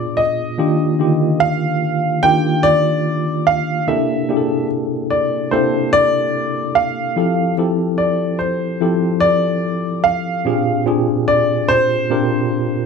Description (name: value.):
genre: soul.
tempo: 73 BPM.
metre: 4/4.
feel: straight.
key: unclear.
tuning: A4 = 439 Hz.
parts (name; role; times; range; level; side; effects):
warm concert grand piano; melody; 0.0-12.9 s; C5 to G5; -18 LUFS; right 1 dB; none.
tine electric piano; accompaniment; 0.0-12.9 s; Bb2 to Bb4; -18 LUFS; left 1 dB; fast stereo tremolo.
room: moderate studio reverb, RT60 0.5 s.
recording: none.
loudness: -15 LUFS.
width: side -5 dB against mid.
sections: 0.0-12.9 A section.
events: none.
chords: 0.0 Bb7b9; 0.6 Ebmaj7; 3.9 C13; 7.2 Fmaj7; 10.5 Bb13.